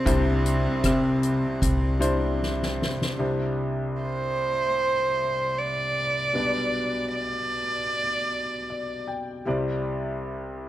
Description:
acoustic folk-pop ballad; 77 BPM; 4/4; straight; C major; A4 = 443 Hz
warm cello; second line; 0.0-9.0 s; C4 to D5; -26 LUFS; right 2 dB
warm grand piano; accompaniment; 0.0-10.7 s; B1 to G5; -28 LUFS; left 1 dB
woody fretless electric bass; bass; 0.1-2.8 s; C2 to C3; -24 LUFS; left 1 dB
soft-mallet drum kit; drums; 0.1-3.2 s; hi-hat, kick drum, rim click, snare drum; -28 LUFS; equal
light reverb; -23 LUFS; side -13 dB against mid
0.0-3.2 A section; 3.2-10.7 B section
drum fill 2.4-3.2; cello solo 3.2-10.7
0.0 Cadd9; 6.3 G/B; 9.5 Cadd9

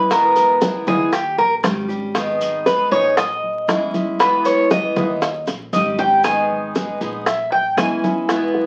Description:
latin, Cuban son and guajira; 117 BPM; 4/4; straight; G# harmonic minor; A4 = 439 Hz
picked steel-string acoustic guitar; accompaniment; 0.0-8.7 s; B2 to G#4; -24 LUFS; equal
Cuban tres; arpeggios; 0.0-8.5 s; G4 to G#5; -20 LUFS; equal
upright bass; bass; 0.0-8.7 s; G#1 to E2; -33 LUFS; equal
bongos; percussion; 0.1-8.7 s; -24 LUFS; equal
congas; percussion; 0.1-8.7 s; -29 LUFS; equal
maracas; percussion; 0.1-8.5 s; -37 LUFS; equal
wet club reverb, RT60 0.5 s; very old 78 rpm record, vinyl crackle; -18 LUFS; mono
0.0-8.7 A section
Cuban tres solo 0.0-8.7; drum fill 5.5-6.2
0.1 E; 1.1 D#7; 2.2 G#m; 3.2 A#m7b5; 4.2 E; 5.2 D#7; 6.2 G#m; 7.3 A#m7b5

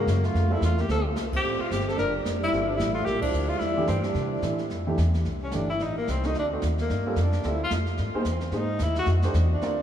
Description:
jazz, small-group swing and bop; 220 BPM; 4/4; swing 59% on 8ths; F major from 4.7 s; A4 = 440 Hz
breathy tenor saxophone; melody; 0.0-9.8 s; A#3 to A#4; -28 LUFS; left 1 dB
breathy trombone; second line; 0.0-4.4 s; C#3 to D4; -32 LUFS; right 2 dB
warm upright piano; accompaniment; 0.0-9.8 s; E3 to D5; -32 LUFS; right 2 dB
upright bass; bass; 0.0-9.8 s; E#1 to C3; -26 LUFS; equal
jazz brush drum kit; drums; 0.1-9.8 s; brushed snare drum, hi-hat, kick drum, ride cymbal, snare drum; -35 LUFS; equal
wet cathedral reverb, RT60 5.1 s; in a vast, echoing space; -23 LUFS; side -10 dB against mid
0.0-4.7 A section; 4.7-9.8 B section
band accent 1.3, 3.2; tenor saxophone solo 4.7-9.8
0.3 Fmaj7; 1.4 G9sus4; 2.0 F#maj7#5; 2.5 Gm9; 3.6 Em7; 4.2 C69; 4.7 Fmaj9; 5.8 Adim; 6.3 D7b9; 6.9 Gm9; 8.0 C7alt; 9.1 Fmaj9

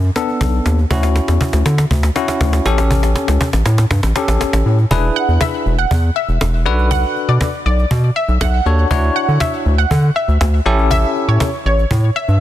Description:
dance-pop; 120 BPM; 4/4; straight; D major; A4 = 441 Hz
round analog bass; bass; 0.0-12.4 s; E1 to D3; -14 LUFS; equal
cajon; drums; 0.0-12.3 s; -21 LUFS; equal
bell-like tine electric piano; accompaniment; 0.2-11.5 s; B3 to C#5; -19 LUFS; left 3 dB; medium stereo tremolo, low-pass filter
analog pluck; melody; 5.2-12.4 s; C#5 to F#5; -20 LUFS; right 1 dB; chorus, ping-pong delay
little or no reverb; dense, heavily limited modern master; -13 LUFS; side -13 dB against mid
0.0-4.9 A section; 4.9-12.4 B section
build-up 0.0-4.9; drum fill 0.0-4.9; drop 4.9-12.4
0.0 Bm7; 0.9 Dmaj9; 2.7 A7; 4.9 E7; 6.7 Bm7; 8.9 Dmaj9; 10.7 A7

